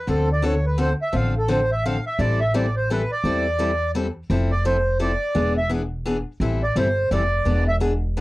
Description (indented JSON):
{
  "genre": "acoustic string swing (jazz manouche)",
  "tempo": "171 BPM",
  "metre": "3/4",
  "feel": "swing 60% on 8ths",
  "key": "A minor",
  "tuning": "A4 = 440 Hz",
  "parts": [
    { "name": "accordion", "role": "melody", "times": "0.0-7.8 s", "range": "A4 to F5", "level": "-23 LUFS", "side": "right 1 dB", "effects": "none" },
    { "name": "picked steel-string acoustic guitar", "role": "accompaniment", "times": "0.1-8.2 s", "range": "D3 to A4", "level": "-25 LUFS", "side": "left 2 dB", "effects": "none" },
    { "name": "upright bass", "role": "bass", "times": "0.1-8.2 s", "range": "E1 to E2", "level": "-23 LUFS", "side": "equal", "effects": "none" }
  ],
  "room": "light reverb",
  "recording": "worn, warbling old tape, cassette tape, warbly pitch drift",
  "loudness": "-19 LUFS",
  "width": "side -19 dB against mid",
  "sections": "0.0-8.2 A section",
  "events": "accordion solo 0.0-8.2",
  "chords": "0.1 Dm7; 2.2 Am7; 4.3 Fmaj7; 5.4 E7; 6.4 Am7; 7.5 E7"
}